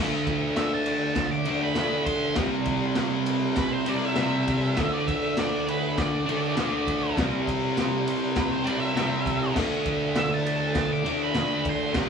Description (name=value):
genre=garage rock duo or trio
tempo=100 BPM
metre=4/4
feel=straight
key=unclear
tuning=A4 = 440 Hz
part: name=fuzz guitar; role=riff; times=0.0-12.1 s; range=C3 to D4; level=-25 LUFS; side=equal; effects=distortion
part: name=raw garage drum kit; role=drums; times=0.3-12.1 s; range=crash cymbal, kick drum, ride cymbal, snare drum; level=-30 LUFS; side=left 1 dB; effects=none
part: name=octave-fuzz lead guitar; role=melody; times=0.6-12.0 s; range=B4 to D6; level=-30 LUFS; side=right 2 dB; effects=distortion
room=moderate studio reverb, RT60 0.5 s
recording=band playing live in one room, small room ambience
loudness=-23 LUFS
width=side -6 dB against mid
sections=0.0-12.1 A section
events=none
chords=0.0 D5; 2.4 C; 4.8 D5; 7.2 C; 9.6 D5